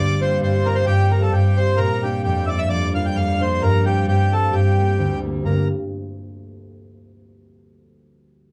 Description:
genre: celtic folk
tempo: 131 BPM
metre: 2/4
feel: swing 54% on 8ths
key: G minor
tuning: A4 = 439 Hz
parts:
  - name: accordion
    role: melody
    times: 0.0-5.7 s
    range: G4 to G5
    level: -25 LUFS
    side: equal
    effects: none
  - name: concert harp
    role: accompaniment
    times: 0.0-7.3 s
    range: D2 to A4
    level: -21 LUFS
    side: equal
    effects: none
  - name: bright chamber string section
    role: drone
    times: 0.0-5.5 s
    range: G2 to G3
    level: -30 LUFS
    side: equal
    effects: none
room: wet studio ambience, RT60 0.5 s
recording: dark, warm production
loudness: -19 LUFS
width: mono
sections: 0.0-5.5 A section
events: none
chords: 0.0 Csus4/G; 1.8 Bb; 3.6 Csus4/G; 4.5 Gmadd9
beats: 0.41 | 0.87 1.33 | 1.78 2.24 | 2.70 3.16 | 3.62 4.08 | 4.54 4.99 | 5.45 5.91

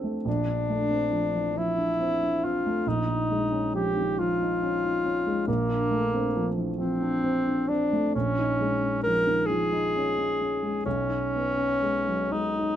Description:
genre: classical, impressionist duo for alto saxophone and grand piano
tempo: 45 BPM (dotted quarters)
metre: 6/8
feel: uneven beats, rubato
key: unclear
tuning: A4 = 441 Hz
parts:
  - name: dark grand piano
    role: accompaniment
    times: 0.0-12.8 s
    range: Bb1 to G4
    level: -27 LUFS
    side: right 1 dB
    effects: none
  - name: clear alto saxophone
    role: melody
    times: 0.3-12.8 s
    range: A#3 to A#4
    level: -26 LUFS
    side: left 1 dB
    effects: none
room: light reverb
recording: minimal, uncompressed stereo recording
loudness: -24 LUFS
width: side -10 dB against mid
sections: 0.0-12.8 A section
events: none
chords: 0.3 Bbmaj9; 2.8 C#add9/Bb; 5.5 A#maj9; 8.1 C#add9/A#; 10.9 B69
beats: | 0.26 1.56 | 2.85 4.17 | 5.48 6.79 | 8.14 9.48 | 10.85 12.32

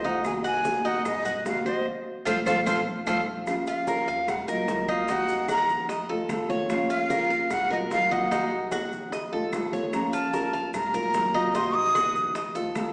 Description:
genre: latin, Cuban son and guajira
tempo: 149 BPM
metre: 4/4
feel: straight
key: Bb harmonic minor from 3.5 s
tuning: A4 = 440 Hz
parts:
  - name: breathy jazz flute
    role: melody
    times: 0.0-12.4 s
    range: Eb5 to Eb6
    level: -26 LUFS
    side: equal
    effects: none
  - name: nylon-string guitar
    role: accompaniment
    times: 0.0-12.9 s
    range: C3 to Gb4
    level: -30 LUFS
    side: equal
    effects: none
  - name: Cuban tres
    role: arpeggios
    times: 0.0-12.9 s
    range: Eb4 to F5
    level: -30 LUFS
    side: equal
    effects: none
  - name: upright bass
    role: bass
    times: 0.0-12.9 s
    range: Bb1 to Gb2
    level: -45 LUFS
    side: equal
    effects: none
  - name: bongos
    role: percussion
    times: 0.0-12.9 s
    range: none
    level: -36 LUFS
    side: equal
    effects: none
  - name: congas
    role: percussion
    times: 0.0-12.9 s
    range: none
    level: -40 LUFS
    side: equal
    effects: none
  - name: maracas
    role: percussion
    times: 0.0-12.9 s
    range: none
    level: -49 LUFS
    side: right 1 dB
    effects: none
  - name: claves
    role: percussion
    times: 0.2-12.9 s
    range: none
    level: -40 LUFS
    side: right 1 dB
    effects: none
room: wet recital hall reverb, RT60 1.5 s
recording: recorded in a church or concert hall, small speaker sound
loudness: -23 LUFS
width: side -30 dB against mid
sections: 0.0-3.5 A section; 3.5-12.9 B section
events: band accent 1.9-3.5; drum fill 2.9-3.5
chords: 0.2 Cm7b5; 1.9 F; 3.5 Bbm; 4.3 Cm7b5; 5.9 F7; 6.7 Bbm; 7.5 Cm7b5; 9.1 F7; 9.9 Bbm; 10.7 Cm7b5; 12.3 F7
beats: | 0.25 0.65 1.05 1.46 | 1.86 2.26 2.66 3.07 | 3.47 3.88 4.28 4.68 | 5.09 5.49 5.89 6.30 | 6.70 7.11 7.51 7.91 | 8.32 8.72 9.12 9.53 | 9.93 10.34 10.74 11.14 | 11.54 11.95 12.35 12.75

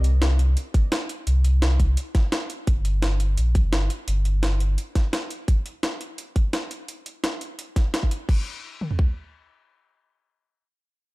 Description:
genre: liquid drum and bass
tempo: 171 BPM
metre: 4/4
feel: swing 54% on 16ths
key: unclear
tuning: A4 = 437 Hz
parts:
  - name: sub bass with octave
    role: bass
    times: 0.0-4.8 s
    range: G1 to C2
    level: -20 LUFS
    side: equal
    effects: none
  - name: jungle sampler-style drum kit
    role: drums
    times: 0.0-8.4 s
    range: crash cymbal, hi-hat, snare drum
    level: -29 LUFS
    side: equal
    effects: overdrive, studio ambience
  - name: garage drum kit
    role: drums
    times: 0.7-9.1 s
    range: kick drum, toms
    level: -20 LUFS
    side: equal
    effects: studio ambience
room: little or no reverb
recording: dark, warm production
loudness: -21 LUFS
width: side -22 dB against mid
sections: 0.0-8.3 A section; 8.3-11.1 B section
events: none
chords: none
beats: 0.22 0.57 0.92 | 1.27 1.62 1.97 2.32 | 2.67 3.02 3.38 3.73 | 4.08 4.43 4.78 5.13 | 5.48 5.83 6.18 6.53 | 6.88 7.23 7.58 7.94 | 8.29 8.64 8.99

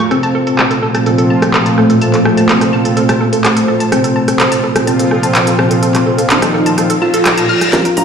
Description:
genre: melodic techno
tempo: 126 BPM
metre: 4/4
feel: straight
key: unclear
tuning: A4 = 441 Hz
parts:
  - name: dark analog pad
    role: sustained chords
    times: 0.0-8.0 s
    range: Bb2 to Bb5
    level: -18 LUFS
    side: equal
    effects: chorus, sidechain pumping
  - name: analog pluck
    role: arpeggios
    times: 0.0-8.0 s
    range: A4 to F6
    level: -18 LUFS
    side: right 1 dB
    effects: chorus, sidechain pumping, tape echo
  - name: wide unison lead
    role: melody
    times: 0.1-8.0 s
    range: A3 to F4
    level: -14 LUFS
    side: equal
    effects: sidechain pumping, digital delay
  - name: techno drum kit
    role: drums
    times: 0.1-8.0 s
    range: handclaps, hi-hat, rim click, snare drum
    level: -16 LUFS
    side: equal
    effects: sidechain pumping on hats
  - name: brassy analog pad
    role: stabs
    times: 0.9-7.5 s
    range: Bb2 to F4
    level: -17 LUFS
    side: right 1 dB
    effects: chorus, sidechain pumping, tape echo
  - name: reverse cymbal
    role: sound effects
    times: 7.0-7.7 s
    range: none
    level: -19 LUFS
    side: left 5 dB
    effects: none
  - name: tight sequencer bass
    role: bass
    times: 7.7-8.0 s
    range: Bb1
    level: -17 LUFS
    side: equal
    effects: sidechain pumping, high-pass filter
  - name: electronic kick drum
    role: drums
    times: 7.7-7.8 s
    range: none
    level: -17 LUFS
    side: right 1 dB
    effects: high-pass filter on kick
room: moderate lush hall reverb, RT60 2.4 s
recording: played on a big sound system in a bare room, stone room reverb, low-pass filter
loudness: -10 LUFS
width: side -7 dB against mid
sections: 0.0-7.7 A section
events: filter sweep on analog synth lead 0.0-7.7; filter sweep on analog synth pad 0.0-7.7; filter sweep 0.0-7.7; reverse cymbal 7.0-7.7; drum fill 7.7-8.0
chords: 0.1 F/Bb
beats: | 0.11 0.59 1.06 1.54 | 2.02 2.49 2.97 3.44 | 3.92 4.40 4.87 5.35 | 5.83 6.30 6.78 7.25 | 7.73

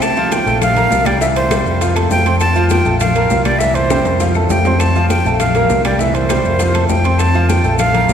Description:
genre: latin, salsa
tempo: 201 BPM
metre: 4/4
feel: straight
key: F major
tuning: A4 = 441 Hz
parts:
  - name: breathy bright jazz flute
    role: melody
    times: 0.0-8.1 s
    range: C5 to A5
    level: -17 LUFS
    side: equal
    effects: none
  - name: bongos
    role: percussion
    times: 0.0-8.1 s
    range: none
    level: -26 LUFS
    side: left 3 dB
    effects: none
  - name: claves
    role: percussion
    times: 0.0-7.9 s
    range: none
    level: -32 LUFS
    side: left 6 dB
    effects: none
  - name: congas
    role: percussion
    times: 0.0-8.1 s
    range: none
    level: -22 LUFS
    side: left 1 dB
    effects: none
  - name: maracas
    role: percussion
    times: 0.0-8.1 s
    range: none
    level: -31 LUFS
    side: left 6 dB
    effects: none
  - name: timbales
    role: percussion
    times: 0.0-8.1 s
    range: none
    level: -25 LUFS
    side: right 3 dB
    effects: none
  - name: bright upright piano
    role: accompaniment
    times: 0.2-8.1 s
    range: E3 to C6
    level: -19 LUFS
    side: equal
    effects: none
  - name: fingered electric bass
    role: bass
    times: 0.5-8.1 s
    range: Bb1 to F2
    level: -16 LUFS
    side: equal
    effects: none
room: wet cathedral reverb, RT60 5.6 s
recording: recorded in a church or concert hall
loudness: -12 LUFS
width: side -8 dB against mid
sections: 0.0-8.1 A section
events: drum fill 3.9-4.8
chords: 0.0 F; 0.6 Bb5; 1.2 C; 1.8 F; 3.0 Bb5; 3.6 C; 4.2 F; 5.4 Bb5; 6.0 C; 6.6 F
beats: | 0.02 0.32 0.62 0.92 | 1.21 1.51 1.81 2.11 | 2.41 2.71 3.00 3.30 | 3.60 3.90 4.20 4.50 | 4.80 5.10 5.40 5.70 | 6.00 6.29 6.59 6.89 | 7.19 7.49 7.79 8.09

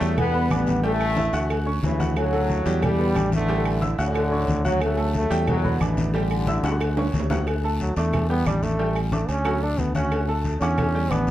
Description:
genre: latin, salsa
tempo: 181 BPM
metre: 4/4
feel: straight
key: D major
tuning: A4 = 440 Hz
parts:
  - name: bright trombone section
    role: melody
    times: 0.0-7.1 s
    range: F#2 to B3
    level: -25 LUFS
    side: left 1 dB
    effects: none
  - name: bright upright piano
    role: accompaniment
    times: 0.0-11.3 s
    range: D3 to F#6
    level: -30 LUFS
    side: right 2 dB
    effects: none
  - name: fingered electric bass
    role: bass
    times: 0.0-11.3 s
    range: A1 to E2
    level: -24 LUFS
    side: equal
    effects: none
  - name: agogo bells and timbales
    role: percussion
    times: 0.0-11.3 s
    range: none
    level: -35 LUFS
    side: right 4 dB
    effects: none
  - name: cowbell and bongos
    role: percussion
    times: 0.0-11.3 s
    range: none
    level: -32 LUFS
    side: left 2 dB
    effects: none
  - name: guiro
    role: percussion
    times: 0.0-11.3 s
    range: none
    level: -43 LUFS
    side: left 5 dB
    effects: none
  - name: claves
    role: percussion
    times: 0.2-11.3 s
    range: none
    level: -38 LUFS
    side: right 4 dB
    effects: none
  - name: congas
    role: percussion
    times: 0.2-11.3 s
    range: none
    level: -29 LUFS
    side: left 1 dB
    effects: none
  - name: brilliant trombone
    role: melody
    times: 7.8-11.3 s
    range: F#3 to D4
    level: -26 LUFS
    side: equal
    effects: none
room: light reverb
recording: none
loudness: -20 LUFS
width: side -13 dB against mid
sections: 0.0-7.5 A section; 7.5-11.3 B section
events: drum fill 6.6-7.5; trombone solo 7.5-11.3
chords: 0.2 Em7; 0.8 A7sus4; 1.5 Dmaj7; 2.8 Em7; 3.5 A7sus4; 4.2 Dmaj7; 5.5 Em7; 6.1 A7sus4; 6.8 Dmaj7; 7.5 D5; 8.1 Em7; 8.8 A7sus4; 9.5 Dmaj7; 10.8 Em7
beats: 0.17 0.51 | 0.84 1.17 1.50 1.83 | 2.16 2.50 2.83 3.16 | 3.49 3.82 4.15 4.48 | 4.82 5.15 5.48 5.81 | 6.14 6.47 6.80 7.13 | 7.47 7.80 8.13 8.46 | 8.79 9.12 9.46 9.79 | 10.12 10.45 10.78 11.11

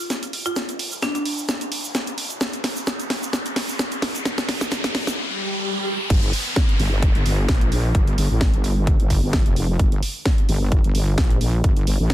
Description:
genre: bass house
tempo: 130 BPM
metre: 4/4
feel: swing 54% on 16ths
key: G minor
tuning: A4 = 440 Hz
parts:
  - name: riser, swell and downlifter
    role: sound effects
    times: 0.7-9.8 s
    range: none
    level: -29 LUFS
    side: equal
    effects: none
  - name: house drum kit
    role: drums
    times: 0.1-12.1 s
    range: crash cymbal, hi-hat, snare drum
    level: -25 LUFS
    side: equal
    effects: none
  - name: egg shaker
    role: percussion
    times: 0.1-5.2 s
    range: none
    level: -35 LUFS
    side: right 4 dB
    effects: none
  - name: buzzing marimba with hard mallets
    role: melody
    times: 0.5-1.2 s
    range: D4 to F4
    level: -28 LUFS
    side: equal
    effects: digital delay
  - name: wobble bass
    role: bass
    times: 6.1-12.1 s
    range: F1 to Bb1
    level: -20 LUFS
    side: equal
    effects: chorus, tube saturation, sidechain pumping
  - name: electronic kick drum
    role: drums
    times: 6.1-12.1 s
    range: none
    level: -18 LUFS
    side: equal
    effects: none
room: little or no reverb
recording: dense, heavily limited modern master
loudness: -19 LUFS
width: side -14 dB against mid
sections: 0.0-6.1 A section; 6.1-12.1 B section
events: build-up 0.0-6.1; drum fill 0.0-5.2; riser 0.7-6.1; swell 5.2-6.1; drop 6.1-12.1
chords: 0.0 N.C.; 6.1 Gm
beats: 0.10 | 0.56 1.02 1.49 1.95 | 2.41 2.87 3.33 3.79 | 4.26 4.72 5.18 5.64 | 6.10 6.56 7.03 7.49 | 7.95 8.41 8.87 9.33 | 9.79 10.26 10.72 11.18 | 11.64 12.10

